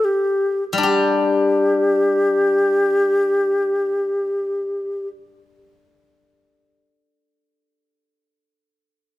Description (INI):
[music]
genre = chinese traditional, Chinese chamber ensemble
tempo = free time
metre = none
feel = none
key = unclear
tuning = A4 = 443 Hz
[part]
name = bright xiao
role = melody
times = 0.0-5.1 s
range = G4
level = -18 LUFS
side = left 1 dB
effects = none
[part]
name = steel-string zither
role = accompaniment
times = 0.7-6.8 s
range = G3 to G4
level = -21 LUFS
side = left 4 dB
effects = none
[sound]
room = light reverb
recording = minimal, uncompressed stereo recording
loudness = -16 LUFS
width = side -15 dB against mid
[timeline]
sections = 0.8-4.3 A section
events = none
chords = none